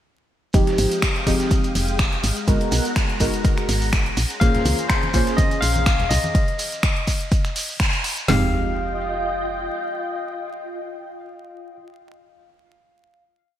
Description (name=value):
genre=deep house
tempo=124 BPM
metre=4/4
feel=swing 55% on 16ths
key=F minor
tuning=A4 = 439 Hz
part: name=soft string machine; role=sustained chords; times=0.8-11.8 s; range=Ab3 to Eb6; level=-30 LUFS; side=left 1 dB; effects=phaser, ensemble chorus, sidechain pumping
part: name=deep mellow chord stab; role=stabs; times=0.5-11.8 s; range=F3 to C5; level=-24 LUFS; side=equal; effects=analog chorus, sidechain pumping
part: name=woody FM bass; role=bass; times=0.5-9.7 s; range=F1 to Db2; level=-24 LUFS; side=equal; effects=sidechain pumping
part: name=deep house drum kit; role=drums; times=0.5-8.4 s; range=hi-hat, kick drum, snare drum, toms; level=-20 LUFS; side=equal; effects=none
part: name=deep house drum kit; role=drums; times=0.5-8.3 s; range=finger snaps, hi-hat, ride cymbal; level=-26 LUFS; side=equal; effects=gated reverb
part: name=dusty soul sampler-style drum kit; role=drums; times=0.5-6.2 s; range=hi-hat, snare drum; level=-35 LUFS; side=equal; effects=overdrive, sidechain pumping on hats, high-pass filter on hats, high-pass filter on snare, high-pass filter on room, gated reverb
part: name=shekere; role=percussion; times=0.5-8.3 s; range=none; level=-33 LUFS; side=right 3 dB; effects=none
part: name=barky tine electric piano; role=melody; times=4.4-11.8 s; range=C5 to F5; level=-28 LUFS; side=left 2 dB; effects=overdrive, phaser, ping-pong delay
part: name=congas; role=percussion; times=4.6-6.3 s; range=none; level=-30 LUFS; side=left 1 dB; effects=sidechain pumping on perc
room=moderate lush hall reverb, RT60 2.0 s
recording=bright 1980s-style digital production, vinyl crackle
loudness=-18 LUFS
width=side -11 dB against mid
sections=0.5-8.3 drop; 8.3-12.2 final chord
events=drop 0.5-8.3; band accent 7.8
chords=0.5 Fm9; 2.2 Abm9; 4.2 Bbm9; 6.1 Cm9; 8.3 Fm9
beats=| 0.54 1.03 1.51 1.99 | 2.48 2.96 3.44 3.93 | 4.41 4.90 5.38 5.87 | 6.35 6.83 7.32 7.80 | 8.28 8.77 9.25 9.74 | 10.22 10.70 11.19 11.67